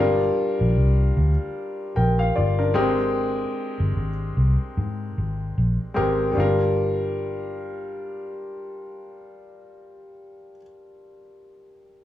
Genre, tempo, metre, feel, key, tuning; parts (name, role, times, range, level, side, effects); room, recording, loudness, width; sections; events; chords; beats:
lush 1970s-style soul; 75 BPM; 4/4; swing 58% on 16ths; G phrygian; A4 = 440 Hz
warm grand piano; accompaniment; 0.0-12.0 s; G3 to G5; -25 LUFS; left 1 dB
vintage muted fingered electric bass; bass; 0.0-10.6 s; G1 to Ab2; -22 LUFS; equal
light reverb, small room reverb; small room ambience; -20 LUFS; side -12 dB against mid
0.0-6.4 A section; 6.4-9.6 B section
0.0 Gm7; 2.8 Abmaj9; 6.4 Gm7
0.76 1.56 2.36 | 3.16 3.96 4.76 5.56 | 6.36 7.16 7.96 8.76